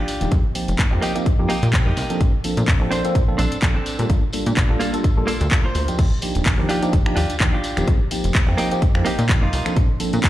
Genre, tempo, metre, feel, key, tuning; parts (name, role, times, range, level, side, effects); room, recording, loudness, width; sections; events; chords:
filtered disco house; 127 BPM; 4/4; swing 55% on 16ths; A4 = 440 Hz
direct-recorded clean electric guitar; riff; 0.0-9.8 s; Bb3 to C5; -26 LUFS; right 1 dB; sidechain pumping, low-pass filter
house drum kit; drums; 0.1-10.3 s; crash cymbal, finger snaps, handclaps, hi-hat; -26 LUFS; left 1 dB; sidechain pumping on hats, sidechain pumping on cymbals
tambourine; percussion; 0.1-10.3 s; -36 LUFS; equal; sidechain pumping on perc, low-pass filter on perc
bright tine electric piano; accompaniment; 0.2-10.3 s; F3 to A4; -24 LUFS; equal; phaser, sidechain pumping, low-pass filter
plucky analog bass; bass; 0.2-10.3 s; Eb1 to Bb2; -22 LUFS; equal; sidechain pumping, low-pass filter
electronic kick drum; drums; 0.3-10.3 s; -19 LUFS; equal
little or no reverb; played on a big sound system in a bare room, large studio reverb; -17 LUFS; side -14 dB against mid
0.0-10.3 A section
0.3 F9sus4; 2.2 Bbmaj9; 4.1 Gm9/Bb; 6.0 Ebmaj9; 7.9 F9sus4; 9.8 Bbmaj9